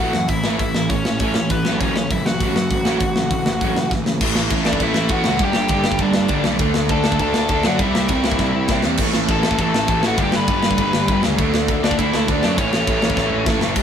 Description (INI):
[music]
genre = punk rock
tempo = 201 BPM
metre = 4/4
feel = straight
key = A major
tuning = A4 = 440 Hz
[part]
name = biting lead guitar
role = melody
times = 0.0-13.4 s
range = B3 to B5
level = -23 LUFS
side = left 1 dB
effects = overdrive
[part]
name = crunchy overdriven guitar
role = riff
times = 0.0-13.8 s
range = F#2 to D4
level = -24 LUFS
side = left 5 dB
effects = none
[part]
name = sludgy distorted guitar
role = riff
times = 0.0-13.8 s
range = F#2 to D4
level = -23 LUFS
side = right 5 dB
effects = overdrive
[part]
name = fuzz picked electric bass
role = bass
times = 0.0-13.8 s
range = F#1 to F#2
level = -24 LUFS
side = equal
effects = overdrive
[part]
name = tight metal drum kit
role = drums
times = 0.1-13.8 s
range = crash cymbal, hi-hat, kick drum, ride cymbal, snare drum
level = -21 LUFS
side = equal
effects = none
[sound]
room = light reverb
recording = band playing live in one room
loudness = -16 LUFS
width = side -8 dB against mid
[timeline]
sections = 0.0-4.2 A section; 4.2-13.8 B section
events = drum fill 3.9-4.2, 8.4-9.0, 13.2-13.8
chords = 0.0 A; 4.2 A5; 5.4 G5; 6.6 D; 7.8 C; 9.0 A5; 10.2 G; 11.4 D5; 12.6 A